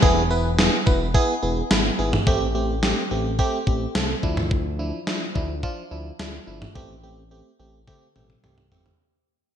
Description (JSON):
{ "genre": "synth-pop", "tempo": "107 BPM", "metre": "4/4", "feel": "straight", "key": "A minor", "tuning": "A4 = 439 Hz", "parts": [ { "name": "FM electric piano", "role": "accompaniment", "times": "0.0-8.9 s", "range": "F3 to B4", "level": "-25 LUFS", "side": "right 2 dB", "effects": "chorus" }, { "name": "smooth synth bass", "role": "bass", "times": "0.0-8.9 s", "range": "E1 to D2", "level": "-27 LUFS", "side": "left 1 dB", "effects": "none" }, { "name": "gated 80s digital drum machine", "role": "drums", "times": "0.0-9.0 s", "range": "kick drum, snare drum, toms", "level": "-22 LUFS", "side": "left 1 dB", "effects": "gated reverb, gated reverb snare" } ], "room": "moderate lush hall reverb, RT60 2.0 s", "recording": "bright 1980s-style digital production", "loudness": "-20 LUFS", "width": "side -9 dB against mid", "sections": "0.0-9.0 A section", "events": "fade-out 0.0-9.0; drum fill 7.9-9.0", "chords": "0.0 E; 2.3 Am7; 4.2 Dmadd9; 6.8 Am7" }